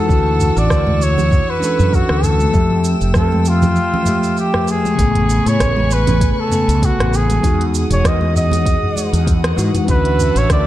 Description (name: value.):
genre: sunset chillout.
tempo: 98 BPM.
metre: 4/4.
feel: swing 55% on 16ths.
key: A major.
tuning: A4 = 440 Hz.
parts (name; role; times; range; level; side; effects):
warm flugelhorn; melody; 0.0-10.7 s; F4 to D#5; -19 LUFS; right 1 dB; tape echo.
bell-like tine electric piano; accompaniment; 0.0-10.7 s; C#3 to E5; -20 LUFS; moving between left 4 dB and right 3 dB; auto-pan.
warm chamber string section; sustained chords; 0.0-10.7 s; A3 to E6; -27 LUFS; left 2 dB; none.
mellow fretless electric bass; bass; 0.1-10.7 s; E1 to A2; -16 LUFS; equal; analog chorus.
electronic kick drum; drums; 0.1-10.6 s; none; -17 LUFS; equal; none.
smooth R&B drum kit; drums; 0.1-10.6 s; hi-hat, rim click, shaker, toms; -22 LUFS; equal; none.
congas; percussion; 0.9-9.9 s; none; -25 LUFS; right 2 dB; none.
room: light reverb.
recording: dark, warm production.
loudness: -13 LUFS.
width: side -14 dB against mid.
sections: 0.0-10.7 A section.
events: break 3.8-5.0.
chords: 0.1 Dmaj9; 2.5 Fmaj9; 5.0 Amaj9; 7.4 Emaj9; 9.9 Dmaj9.